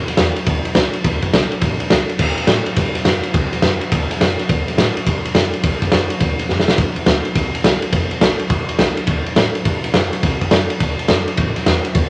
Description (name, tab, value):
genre	rockabilly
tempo	209 BPM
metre	4/4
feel	swing 64% on 8ths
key	D mixolydian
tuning	A4 = 440 Hz
part	upright bass	bass	0.0-12.1 s	F1 to A2	-26 LUFS	equal	none
part	raw garage drum kit	drums	0.1-12.0 s	crash cymbal, kick drum, ride cymbal, snare drum	-18 LUFS	equal	none
room	moderate club reverb, RT60 0.6 s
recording	nothing above 10.4 kHz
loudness	-17 LUFS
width	mono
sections	0.0-2.2 A section; 2.2-12.1 B section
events	drum fill 6.5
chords	none